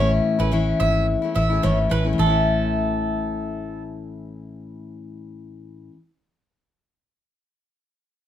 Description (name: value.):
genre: pop.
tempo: 108 BPM.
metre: 4/4.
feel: swing 55% on 16ths.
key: A major.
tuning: A4 = 435 Hz.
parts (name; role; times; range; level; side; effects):
picked steel-string acoustic guitar; accompaniment; 0.0-6.0 s; A2 to E4; -23 LUFS; left 3 dB; none.
bowl-back mandolin; arpeggios; 0.0-3.8 s; A4 to E5; -26 LUFS; right 5 dB; none.
vintage muted fingered electric bass; bass; 0.0-5.9 s; G#1 to A1; -24 LUFS; right 1 dB; none.
room: moderate studio reverb, RT60 0.6 s.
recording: none.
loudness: -19 LUFS.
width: side -11 dB against mid.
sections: 0.0-2.2 A section; 2.2-4.4 B section.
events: none.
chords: 0.0 A.